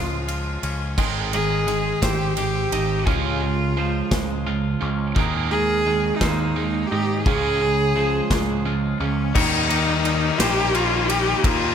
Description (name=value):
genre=post-rock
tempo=57 BPM (dotted quarters)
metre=6/8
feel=straight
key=unclear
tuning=A4 = 441 Hz
part: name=rich cello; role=melody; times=0.0-11.7 s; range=Db4 to Ab4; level=-24 LUFS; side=equal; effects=slapback echo, digital delay
part: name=pedal steel guitar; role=sustained chords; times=0.0-11.7 s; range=Ab3 to C6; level=-37 LUFS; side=left 4 dB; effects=none
part: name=twangy electric guitar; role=arpeggios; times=0.0-11.7 s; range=Db3 to Ab4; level=-32 LUFS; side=left 5 dB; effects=lush chorus, slapback echo, digital delay
part: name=twangy electric guitar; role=arpeggios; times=0.0-11.4 s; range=Ab4 to Eb5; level=-34 LUFS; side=right 4 dB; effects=slapback echo, digital delay
part: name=growling picked electric bass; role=bass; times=0.0-11.7 s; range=Ab1 to Ab2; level=-26 LUFS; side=equal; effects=overdrive
part: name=big rock drum kit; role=drums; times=0.3-11.6 s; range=crash cymbal, kick drum, ride cymbal, snare drum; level=-25 LUFS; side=equal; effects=none
part: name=tight distorted guitar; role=riff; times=1.0-9.3 s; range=Ab2 to Db4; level=-26 LUFS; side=right 10 dB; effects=distortion, slapback echo
part: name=distorted electric guitar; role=riff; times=9.3-11.7 s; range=Eb3 to Eb4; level=-23 LUFS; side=left 14 dB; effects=overdrive, slapback echo
room=light reverb, studio reverb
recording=none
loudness=-19 LUFS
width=side -8 dB against mid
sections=0.0-9.4 A section; 9.4-11.7 B section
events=build-up 0.0-9.4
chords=0.0 Db; 1.0 Abmaj7; 3.1 Db; 5.2 Ebsus4; 7.3 Db; 9.4 Eb7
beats=| 0.99 2.03 | 3.08 4.12 | 5.17 6.21 | 7.26 8.31 | 9.35 10.40 | 11.44